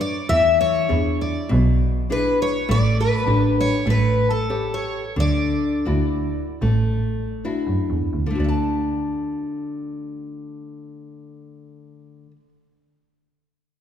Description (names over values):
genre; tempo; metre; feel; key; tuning
fado-style ballad; 62-103 BPM; 4/4; rubato; D major; A4 = 440 Hz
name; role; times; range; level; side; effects
picked twelve-string acoustic guitar; melody; 0.0-7.4 s; A4 to E5; -22 LUFS; left 2 dB; none
nylon-string guitar; accompaniment; 0.0-12.5 s; B2 to A5; -25 LUFS; left 2 dB; none
bright double bass; bass; 0.0-12.4 s; A1 to F#2; -22 LUFS; right 2 dB; none
room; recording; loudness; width
wet scoring stage reverb, RT60 2.1 s; recorded in a church or concert hall; -18 LUFS; side -9 dB against mid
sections
0.0-8.4 A section; 8.4-12.1 B section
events
slowing down 2.7-8.4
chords
0.3 E7; 2.7 A7sus4; 3.9 A7; 5.2 Dadd9; 8.4 D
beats
| 0.28 0.89 1.50 2.09 | 2.68 3.27 3.87 4.50 | 5.17 5.87 6.62 7.46 | 8.38 9.31 10.22 11.16